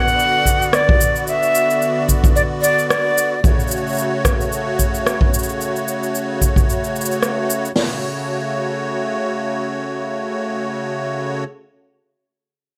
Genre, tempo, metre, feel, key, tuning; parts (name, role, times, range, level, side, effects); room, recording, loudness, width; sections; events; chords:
folktronica; 111 BPM; 4/4; swing 56% on 16ths; F# minor; A4 = 440 Hz
breathy bright jazz flute; melody; 0.0-3.4 s; D5 to F#5; -19 LUFS; equal; delay, plate reverb
musette accordion; sustained chords; 0.0-11.4 s; C#3 to D5; -24 LUFS; equal; plate reverb
electronic shaker and rim click; drums; 0.1-7.7 s; -24 LUFS; equal
swinging big-band drum kit; drums; 0.5-7.9 s; hi-hat, kick drum, snare drum; -19 LUFS; equal
moderate small room ambience, RT60 0.5 s; -19 LUFS; mono
0.0-7.8 A section; 7.8-12.1 B section
0.0 Bm; 3.4 F#m